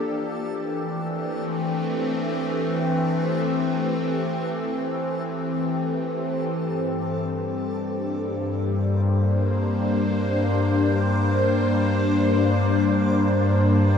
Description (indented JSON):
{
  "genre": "ambient",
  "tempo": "free time",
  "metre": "none",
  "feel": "none",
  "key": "unclear",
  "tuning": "A4 = 442 Hz",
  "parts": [
    { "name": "evolving wavetable pad", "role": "sustained chords", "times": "0.0-14.0 s", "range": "G2 to C5", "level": "-21 LUFS", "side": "left 1 dB", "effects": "phaser, built-in reverb" },
    { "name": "backwards swelling texture", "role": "texture", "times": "0.0-14.0 s", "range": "A5 to D6", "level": "-47 LUFS", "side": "left 1 dB", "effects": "none" }
  ],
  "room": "wet huge ambient reverb, RT60 9.2 s",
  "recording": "small room ambience",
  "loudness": "-21 LUFS",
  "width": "side -7 dB against mid",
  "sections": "0.0-6.5 A section; 6.5-14.0 B section",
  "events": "fade-in on synth texture 6.5-14.0",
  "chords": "0.0 Am7; 6.5 Csus2/G"
}